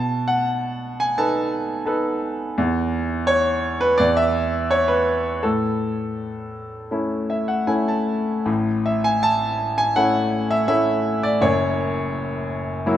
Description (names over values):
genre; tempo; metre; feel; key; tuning
classical, lyrical solo piano; 75-86 BPM; 4/4; rubato; A major; A4 = 438 Hz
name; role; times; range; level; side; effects
bright grand piano; solo; 0.0-13.0 s; F#1 to A5; -19 LUFS; equal; none
room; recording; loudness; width
moderate scoring stage reverb, RT60 2.0 s; none; -19 LUFS; side -11 dB against mid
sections
0.0-8.5 A section; 8.5-13.0 A section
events
grand piano fill 6.9-8.5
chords
0.0 B7; 2.6 N.C.; 5.4 A; 11.4 F#5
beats
0.46 1.18 1.88 | 2.58 3.28 3.99 4.71 | 5.44 6.17 6.91 7.69 | 8.48 9.23 9.97 10.70 | 11.42 12.14 12.87